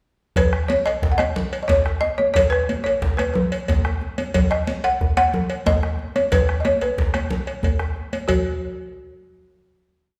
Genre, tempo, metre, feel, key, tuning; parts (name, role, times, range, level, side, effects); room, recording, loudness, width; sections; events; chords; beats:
west african traditional, West African drum ensemble; 121 BPM (dotted quarters); 12/8; straight; B major pentatonic; A4 = 440 Hz
balafon; melody; 0.4-8.4 s; F#4 to F#5; -24 LUFS; equal
bombo; percussion; 0.4-8.4 s; -26 LUFS; equal
congas; percussion; 0.4-8.4 s; -30 LUFS; equal
cowbell; percussion; 0.4-8.4 s; -32 LUFS; equal
djembe; percussion; 0.4-8.4 s; -30 LUFS; equal
wet recital hall reverb, RT60 1.6 s; recorded in a church or concert hall; -21 LUFS; mono
0.4-8.3 A section; 8.3-10.2 final note
| 0.36 0.86 1.36 1.86 | 2.36 2.85 3.35 3.85 | 4.35 4.84 5.34 5.83 | 6.32 6.82 7.31 7.80 | 8.29